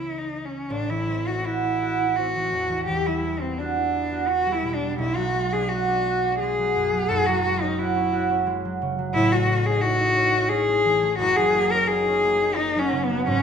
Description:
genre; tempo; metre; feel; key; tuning
classical, impressionist duo for cello and harp; 86 BPM; 3/4; rubato; A dorian; A4 = 439 Hz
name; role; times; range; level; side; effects
rich cello; melody; 0.0-13.4 s; B3 to A#4; -22 LUFS; left 2 dB; none
concert harp; accompaniment; 0.0-13.4 s; E1 to F#4; -25 LUFS; right 2 dB; none
room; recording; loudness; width
moderate recital hall reverb, RT60 1.3 s; minimal, uncompressed stereo recording; -20 LUFS; side -7 dB against mid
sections
0.7-13.4 A section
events
none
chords
0.0 C#m7; 0.7 Am6; 2.9 Em9; 5.0 Bm6; 7.1 F#sus2; 9.1 Amaj7#11; 11.2 F#69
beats
| 0.71 1.46 2.17 | 2.88 3.59 4.29 | 5.00 5.70 6.40 | 7.09 7.78 8.47 | 9.15 9.83 10.51 | 11.21 11.90 12.58 | 13.29

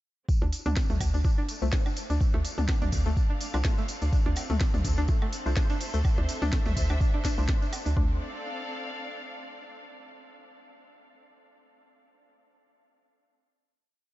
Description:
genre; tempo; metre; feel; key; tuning
minimal techno; 125 BPM; 4/4; swing 55% on 16ths; D minor; A4 = 440 Hz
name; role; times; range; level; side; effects
electronic kick drum; drums; 0.3-8.1 s; none; -26 LUFS; equal; none
tambourine; percussion; 0.3-7.9 s; none; -43 LUFS; left 2 dB; none
rich studio string section; texture; 0.3-9.8 s; C4 to F5; -40 LUFS; left 1 dB; sidechain pumping
string-like resonator pluck; riff; 0.4-8.2 s; A3 to D4; -36 LUFS; left 1 dB; chorus, sidechain pumping, diffuse ambient delay
hollow knocking FM bass; bass; 0.4-8.2 s; C2 to D2; -28 LUFS; equal; sidechain pumping
electronic percussion blips and toms; percussion; 0.4-7.8 s; none; -39 LUFS; equal; diffuse ambient delay
techno drum kit; drums; 0.5-7.9 s; hi-hat, snare drum; -38 LUFS; equal; none
filtered dub chord stab; stabs; 1.6-8.2 s; A3 to C5; -44 LUFS; left 3 dB; phaser, diffuse ambient delay
room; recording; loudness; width
digital ambience; nothing above 7.7 kHz; -25 LUFS; side -16 dB against mid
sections
0.3-8.0 groove; 8.0-9.9 final chord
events
fade-in on string section 0.3-8.0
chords
0.3 Dm7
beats
| 0.29 0.77 1.25 1.73 | 2.21 2.69 3.17 3.65 | 4.13 4.61 5.09 5.57 | 6.05 6.53 7.01 7.49 | 7.97 8.45 8.93 9.41

